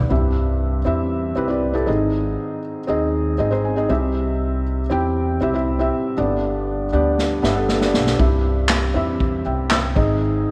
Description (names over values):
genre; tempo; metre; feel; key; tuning
piano-driven pop; 119 BPM; 4/4; straight; unclear; A4 = 439 Hz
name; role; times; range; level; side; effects
felt-muted upright piano; accompaniment; 0.0-10.5 s; G2 to Ab5; -23 LUFS; equal; none
upright bass; bass; 0.0-10.4 s; G1 to E2; -25 LUFS; equal; none
unplugged drum kit; drums; 7.2-10.1 s; handclaps, kick drum, snare drum; -24 LUFS; equal; none
room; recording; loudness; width
moderate echo chamber reverb, RT60 2.5 s; none; -20 LUFS; mono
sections
0.1-10.5 A section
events
felt piano fill 3.4-4.2; drum fill 7.2-8.2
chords
0.1 C; 1.9 Ab; 3.9 C; 6.2 G; 8.2 C; 10.0 Ab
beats
| 0.10 0.61 1.12 1.62 | 2.13 2.63 3.14 3.65 | 4.15 4.66 5.16 5.67 | 6.17 6.68 7.18 7.69 | 8.20 8.70 9.21 9.71 | 10.22